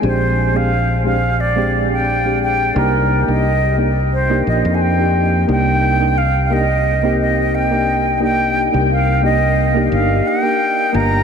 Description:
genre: sunset chillout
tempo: 88 BPM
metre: 4/4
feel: swing 53% on 16ths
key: C minor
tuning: A4 = 440 Hz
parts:
  - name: soft electric-piano-like synth keys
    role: accompaniment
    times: 0.0-11.2 s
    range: Ab3 to G4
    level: -19 LUFS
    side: equal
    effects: chorus, auto-pan, diffuse ambient delay
  - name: fingered electric bass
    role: bass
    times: 0.0-11.2 s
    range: G1 to F2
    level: -18 LUFS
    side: equal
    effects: none
  - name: concert flute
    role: melody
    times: 0.1-11.2 s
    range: Bb4 to Bb5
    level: -17 LUFS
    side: equal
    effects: diffuse ambient delay
room: wet huge ambient reverb, RT60 7.5 s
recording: dreamy mix soaked in reverb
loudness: -13 LUFS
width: side -6 dB against mid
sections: 0.0-5.5 A section; 5.5-11.2 B section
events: none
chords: 0.0 Bb13; 2.8 Cm7; 5.5 Cm9

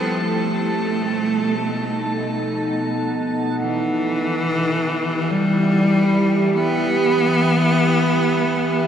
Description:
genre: ambient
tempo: free time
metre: none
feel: none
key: E minor from 3.6 s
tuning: A4 = 440 Hz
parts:
  - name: clear cello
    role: melody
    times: 0.0-8.9 s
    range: E3 to B3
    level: -20 LUFS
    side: equal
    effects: shimmer reverb, tape echo
  - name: evolving wavetable pad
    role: sustained chords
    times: 0.0-8.9 s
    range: B2 to B5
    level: -20 LUFS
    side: equal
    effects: chorus, built-in reverb, shimmer reverb
  - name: drifting glass-harmonics texture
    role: texture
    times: 0.0-8.9 s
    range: A5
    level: -33 LUFS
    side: right 1 dB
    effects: chorus, built-in reverb, shimmer reverb
room: wet huge ambient reverb, RT60 8.0 s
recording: none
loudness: -17 LUFS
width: side -8 dB against mid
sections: 0.0-3.6 A section; 3.6-8.9 B section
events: none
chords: 0.2 B7; 3.6 Em

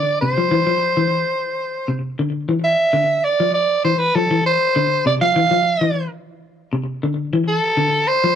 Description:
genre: afrobeat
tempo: 99 BPM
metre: 4/4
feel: straight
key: unclear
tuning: A4 = 441 Hz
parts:
  - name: raspy soprano saxophone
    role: melody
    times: 0.0-8.4 s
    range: A4 to F5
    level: -16 LUFS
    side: right 2 dB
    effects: none
  - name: semi-hollow electric guitar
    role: arpeggios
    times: 0.0-8.4 s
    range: C3 to F3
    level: -20 LUFS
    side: left 3 dB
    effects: slapback echo
room: small room ambience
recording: dry, close 1970s-style studio recording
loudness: -16 LUFS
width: side -8 dB against mid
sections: 0.0-8.4 A section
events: none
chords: 0.0 Cadd9; 7.8 Amadd11

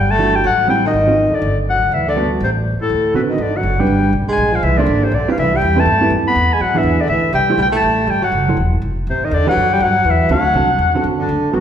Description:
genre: jazz, small-group swing and bop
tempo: 243 BPM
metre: 4/4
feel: swing 60% on 8ths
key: G major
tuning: A4 = 440 Hz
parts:
  - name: warm clarinet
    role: melody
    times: 0.0-11.6 s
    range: D4 to B5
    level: -16 LUFS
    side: left 2 dB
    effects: none
  - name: dark baritone saxophone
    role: second line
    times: 0.0-11.6 s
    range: A2 to B3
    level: -20 LUFS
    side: right 2 dB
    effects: none
  - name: upright bass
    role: bass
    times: 0.0-11.6 s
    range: E1 to G#2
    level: -19 LUFS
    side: equal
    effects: none
  - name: hollow-body jazz guitar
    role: accompaniment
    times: 0.2-11.6 s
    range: D3 to C5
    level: -21 LUFS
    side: right 4 dB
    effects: none
room: wet recital hall reverb, RT60 1.7 s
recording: recorded in a church or concert hall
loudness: -13 LUFS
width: side -9 dB against mid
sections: 0.0-3.4 A section; 3.4-11.3 B section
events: none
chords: 0.4 Am7; 0.9 Ab6; 1.4 Gmaj9; 2.4 Am; 2.9 D6; 3.4 Gmaj7; 4.4 Bb9; 5.4 Cmaj7; 6.4 E7; 7.3 Am7; 8.3 F#m7b5; 8.8 F; 9.3 Em7; 10.3 D7

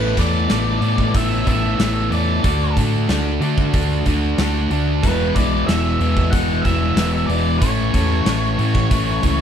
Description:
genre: classic rock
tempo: 93 BPM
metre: 4/4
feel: straight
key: unclear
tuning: A4 = 439 Hz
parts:
  - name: octave-fuzz lead guitar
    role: melody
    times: 0.0-9.4 s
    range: B4 to F#5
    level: -24 LUFS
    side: right 1 dB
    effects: distortion
  - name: distorted electric guitar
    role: riff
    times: 0.0-9.4 s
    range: E2 to D4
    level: -24 LUFS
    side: right 16 dB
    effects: overdrive
  - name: overdriven semi-hollow guitar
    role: riff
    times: 0.0-9.4 s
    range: A2 to A4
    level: -22 LUFS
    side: left 12 dB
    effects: none
  - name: hollow-body short-scale fingered electric bass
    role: bass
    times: 0.0-9.4 s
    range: E1 to D3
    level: -21 LUFS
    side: equal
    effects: none
  - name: gated 80s drum kit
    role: drums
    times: 0.2-9.4 s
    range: hi-hat, kick drum, snare drum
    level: -21 LUFS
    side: equal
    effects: none
room: little or no reverb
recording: none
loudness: -16 LUFS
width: side -8 dB against mid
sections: 0.0-9.4 A section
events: none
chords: 0.0 Asus2; 2.4 D; 5.0 E; 7.6 A

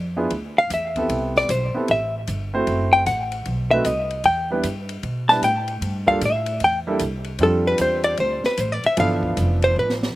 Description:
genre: jazz, small-group swing and bop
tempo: 152 BPM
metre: 4/4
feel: swing 64% on 8ths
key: unclear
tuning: A4 = 440 Hz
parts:
  - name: upright bass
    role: bass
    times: 0.0-10.1 s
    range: F1 to B2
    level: -26 LUFS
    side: right 1 dB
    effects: none
  - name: warm baby grand piano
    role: accompaniment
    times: 0.2-10.1 s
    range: E3 to C5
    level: -24 LUFS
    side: right 2 dB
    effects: slapback echo
  - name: open jazz drum kit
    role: drums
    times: 0.3-10.1 s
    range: hi-hat, kick drum, ride cymbal, snare drum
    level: -33 LUFS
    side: left 1 dB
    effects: none
  - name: hollow-body jazz guitar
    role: melody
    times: 0.6-9.9 s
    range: A4 to A5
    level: -19 LUFS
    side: left 1 dB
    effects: slapback echo
room: little or no reverb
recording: recorded outdoors, with no room sound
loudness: -19 LUFS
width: side -16 dB against mid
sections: 0.0-10.2 A section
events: hollow-body jazz guitar solo 0.0-10.2; drum fill 9.8-10.2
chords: 0.0 E7(no3); 1.1 Am9; 2.7 F#m7b5; 3.5 B7b9; 4.3 Em7; 5.8 Gm9; 6.6 C13; 7.4 F69; 9.0 G13

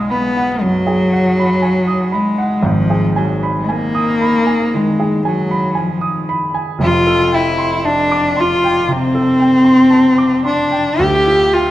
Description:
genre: classical, impressionist duo for cello and grand piano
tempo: 57 BPM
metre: 4/4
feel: rubato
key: F major from 6.8 s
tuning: A4 = 440 Hz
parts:
  - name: dark cello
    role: melody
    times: 0.0-11.7 s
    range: F3 to G4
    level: -13 LUFS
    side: left 1 dB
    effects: none
  - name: warm baby grand piano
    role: accompaniment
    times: 0.0-11.7 s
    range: F1 to D#6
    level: -18 LUFS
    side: right 2 dB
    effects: none
room: wet recital hall reverb, RT60 1.6 s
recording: none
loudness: -12 LUFS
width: side -14 dB against mid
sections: 0.0-11.7 A section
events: none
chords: 0.0 B6; 2.6 Abm; 6.8 F69; 11.0 Dmadd11

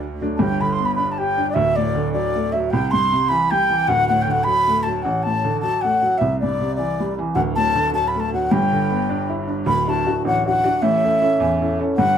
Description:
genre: celtic folk, Celtic jig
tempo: 104 BPM (dotted quarters)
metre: 6/8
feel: straight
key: G major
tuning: A4 = 441 Hz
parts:
  - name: warm upright piano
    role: accompaniment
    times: 0.0-12.2 s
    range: D1 to A4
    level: -21 LUFS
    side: right 1 dB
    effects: none
  - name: mellow baroque flute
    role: melody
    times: 0.4-12.2 s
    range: D5 to C6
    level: -19 LUFS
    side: equal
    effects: none
room: moderate studio reverb, RT60 0.6 s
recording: none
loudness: -17 LUFS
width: side -8 dB against mid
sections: 0.4-9.7 A section; 9.7-12.2 B section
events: none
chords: 0.4 G; 1.6 D; 2.7 C; 3.9 D; 6.2 Cadd9; 7.4 D; 8.5 G6; 9.7 Dadd9; 10.8 A

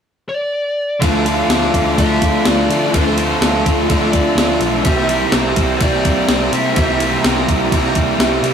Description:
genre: rock, shoegaze and dream pop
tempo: 125 BPM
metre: 4/4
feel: straight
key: D minor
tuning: A4 = 436 Hz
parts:
  - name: fuzz lead guitar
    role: melody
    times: 0.3-7.2 s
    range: C5 to F5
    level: -22 LUFS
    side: left 1 dB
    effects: distortion
  - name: phased string machine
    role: sustained chords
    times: 1.0-8.5 s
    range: E4 to C6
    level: -27 LUFS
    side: left 2 dB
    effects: none
  - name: twelve-string electric guitar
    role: arpeggios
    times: 1.0-8.5 s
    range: E3 to G4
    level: -28 LUFS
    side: right 4 dB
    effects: none
  - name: crunchy overdriven guitar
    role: riff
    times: 1.0-8.5 s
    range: C3 to E4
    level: -19 LUFS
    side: left 4 dB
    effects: none
  - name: overdriven electric guitar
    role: riff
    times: 1.0-8.5 s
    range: C3 to D4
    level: -22 LUFS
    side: equal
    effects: none
  - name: overdriven semi-hollow guitar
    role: riff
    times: 1.0-8.5 s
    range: C3 to G4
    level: -20 LUFS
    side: right 6 dB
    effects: none
  - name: vintage muted picked electric bass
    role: bass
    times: 1.0-8.5 s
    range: B1 to D3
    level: -24 LUFS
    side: equal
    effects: none
  - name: clean 12-bit digital drum machine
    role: drums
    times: 1.0-8.5 s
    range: kick drum, ride cymbal, snare drum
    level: -18 LUFS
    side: equal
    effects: none
room: wet studio reverb, RT60 0.6 s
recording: rough rehearsal-room recording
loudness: -13 LUFS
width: side -7 dB against mid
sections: 0.0-1.0 A section; 1.0-8.5 B section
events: none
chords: 0.0 N.C.; 1.0 Dm7; 4.9 C7

